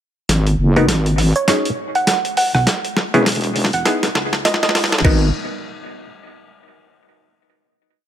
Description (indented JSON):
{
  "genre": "glitch hop",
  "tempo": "101 BPM",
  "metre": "4/4",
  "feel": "swing 59% on 16ths",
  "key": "G# minor",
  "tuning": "A4 = 440 Hz",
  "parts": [
    { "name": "wobble bass", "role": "bass", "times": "0.3-5.3 s", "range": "E1 to C#2", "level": "-17 LUFS", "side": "equal", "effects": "chorus, tube saturation" },
    { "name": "boom bap sampler-style drum kit", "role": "drums", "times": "0.3-5.2 s", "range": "crash cymbal, hi-hat, rim click, snare drum", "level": "-19 LUFS", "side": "equal", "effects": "none" },
    { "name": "electronic kick drum", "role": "drums", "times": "0.3-5.2 s", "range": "none", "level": "-19 LUFS", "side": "equal", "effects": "none" },
    { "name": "muted clav", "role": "stabs", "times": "0.8-5.3 s", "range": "B3 to A#4", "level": "-20 LUFS", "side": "left 1 dB", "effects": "overdrive, sidechain pumping, low-pass filter, digital delay" },
    { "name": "woody wave-folded pluck", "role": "melody", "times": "1.4-4.7 s", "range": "C#5 to F#5", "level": "-21 LUFS", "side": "right 3 dB", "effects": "chorus, cassette tape, digital delay" },
    { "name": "hollow-body short-scale fingered electric bass", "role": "bass", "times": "2.5-4.4 s", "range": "E1 to C#2", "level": "-22 LUFS", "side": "equal", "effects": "none" }
  ],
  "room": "light reverb, digital ambience",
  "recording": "high-pass filter",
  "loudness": "-14 LUFS",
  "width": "side -10 dB against mid",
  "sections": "0.3-5.0 build; 5.0-7.4 final chord",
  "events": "build-up 0.3-5.0; drum fill 0.3-5.0; filter sweep 0.3-5.0",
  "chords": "0.3 G#7(no3); 1.5 B6; 2.7 N.C.; 3.9 C#m7; 5.0 G#m7"
}